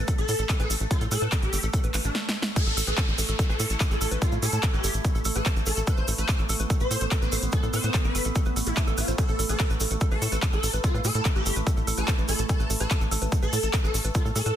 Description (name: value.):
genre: psychedelic trance.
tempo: 145 BPM.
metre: 4/4.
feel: straight.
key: A minor.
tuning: A4 = 442 Hz.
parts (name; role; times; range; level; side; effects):
overtone-sweeping drone; sustained chords; 0.0-14.6 s; A3 to A4; -36 LUFS; right 2 dB; chorus, built-in reverb, sidechain pumping.
woody wave-folded pluck; riff; 0.0-14.5 s; A4 to A5; -35 LUFS; right 4 dB; chorus, auto-pan, sidechain pumping, dub echo.
tight sequencer bass; bass; 0.0-14.5 s; G1 to A2; -27 LUFS; equal; none.
big-room dance drum kit; drums; 0.1-14.5 s; crash cymbal, handclaps, hi-hat, snare drum; -31 LUFS; equal; none.
electronic kick drum; drums; 0.1-14.2 s; none; -25 LUFS; equal; none.
tube shaker; percussion; 0.1-14.5 s; none; -36 LUFS; right 2 dB; none.
swarming rave lead; melody; 0.2-14.5 s; D4 to C5; -32 LUFS; left 1 dB; chorus, phaser, sidechain pumping, ping-pong delay.
downlifter; sound effects; 2.6-5.9 s; none; -34 LUFS; equal; none.
room: digital ambience.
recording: dense, heavily limited modern master.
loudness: -23 LUFS.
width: side -10 dB against mid.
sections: 0.0-2.6 A section; 2.6-14.6 B section.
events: drum fill 2.1-2.6; drop 2.6-14.6.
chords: 0.0 A5.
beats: 0.08 0.49 | 0.91 1.32 1.74 2.15 | 2.56 2.98 3.39 3.80 | 4.22 4.63 5.04 5.46 | 5.87 6.29 6.70 7.11 | 7.53 7.94 8.36 8.77 | 9.18 9.60 10.01 10.43 | 10.84 11.25 11.67 12.08 | 12.49 12.91 13.32 13.73 | 14.15.